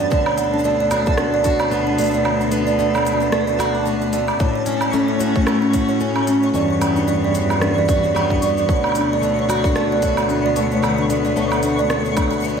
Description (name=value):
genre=folktronica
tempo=112 BPM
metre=4/4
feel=swing 56% on 16ths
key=D major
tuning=A4 = 440 Hz
part: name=buzzing kalimba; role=second line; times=0.0-12.6 s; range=C#4 to D6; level=-20 LUFS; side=right 3 dB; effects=tape echo
part: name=rich string quartet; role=sustained chords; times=0.0-12.6 s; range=D2 to C#4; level=-23 LUFS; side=left 2 dB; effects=none
part: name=picked plugged-in swing-style acoustic guitar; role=arpeggios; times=0.0-12.6 s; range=E2 to F#4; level=-23 LUFS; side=left 1 dB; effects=lush chorus, analog delay
part: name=twinkling granular texture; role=texture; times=0.0-12.6 s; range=A5 to C#6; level=-31 LUFS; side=left 1 dB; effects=built-in reverb, analog chorus
part: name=electronic kick drum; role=drums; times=0.1-12.3 s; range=none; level=-21 LUFS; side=equal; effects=overdrive
part: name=organic electronic drum kit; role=drums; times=0.1-12.6 s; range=cabasa, hi-hat, rim click, woodblock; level=-26 LUFS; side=right 1 dB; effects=overdrive
room=wet cathedral reverb, RT60 6.5 s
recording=dreamy mix soaked in reverb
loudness=-16 LUFS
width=side -6 dB against mid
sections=0.0-12.6 A section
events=kick drops out 3.3-4.4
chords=0.1 D6; 4.4 A6; 6.5 Emadd9; 8.7 D6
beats=| 0.11 0.65 1.18 1.72 | 2.25 2.79 3.33 3.86 | 4.40 4.93 5.47 6.00 | 6.54 7.08 7.61 8.15 | 8.68 9.22 9.76 10.29 | 10.83 11.36 11.90 12.43